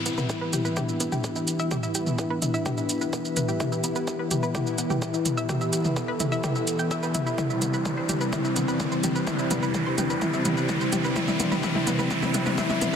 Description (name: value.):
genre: melodic techno.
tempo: 127 BPM.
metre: 4/4.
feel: straight.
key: E minor.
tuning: A4 = 438 Hz.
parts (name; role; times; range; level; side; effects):
expressive synth lead; melody; 0.0-13.0 s; B3 to A4; -32 LUFS; equal; lush chorus, sidechain pumping, ping-pong delay.
deep dark ambient pad; sustained chords; 0.0-13.0 s; E3 to G4; -35 LUFS; left 1 dB; none.
analog pluck; arpeggios; 0.0-13.0 s; B3 to G5; -32 LUFS; equal; chorus, sidechain pumping, dub echo.
brassy analog pad; stabs; 0.0-13.0 s; C3 to E4; -30 LUFS; left 2 dB; chorus, cassette tape, sidechain pumping.
riser; sound effects; 0.0-13.0 s; none; -34 LUFS; equal; none.
granular cloud pad; texture; 0.0-13.0 s; E3 to E5; -35 LUFS; equal; built-in reverb, sidechain pumping.
house drum kit; drums; 0.1-13.0 s; hi-hat, shaker, toms; -28 LUFS; equal; none.
electronic kick drum; drums; 0.3-12.7 s; none; -35 LUFS; equal; high-pass filter on kick, high-pass filter on room.
room: moderate huge ambient reverb, RT60 4.9 s.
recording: heavily compressed radio sound.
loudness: -23 LUFS.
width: side -7 dB against mid.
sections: 0.0-13.0 A section.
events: build-up 0.0-13.0; drum fill 0.0-13.0; riser 0.0-13.0; filter sweep on analog synth lead 0.0-13.0; filter sweep on analog synth pad 0.0-13.0.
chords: 0.0 Em; 7.4 Cadd9.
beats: 0.29 0.77 1.24 | 1.71 2.19 2.66 3.13 | 3.60 4.08 4.55 5.02 | 5.49 5.96 6.44 6.91 | 7.38 7.85 8.33 8.80 | 9.27 9.74 10.22 10.69 | 11.16 11.63 12.11 12.58.